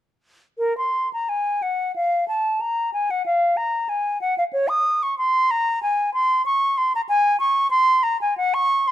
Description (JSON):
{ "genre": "classical, baroque-style fantasia for unaccompanied flute", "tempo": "93 BPM", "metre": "3/4", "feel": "rubato", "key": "Bb minor", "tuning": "A4 = 436 Hz", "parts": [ { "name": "concert flute", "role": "solo", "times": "0.6-8.9 s", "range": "Bb4 to Eb6", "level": "-18 LUFS", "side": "equal", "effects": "none" } ], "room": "light reverb", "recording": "dark, warm production", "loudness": "-19 LUFS", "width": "side -12 dB against mid", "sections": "0.6-8.9 A section", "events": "none", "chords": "none" }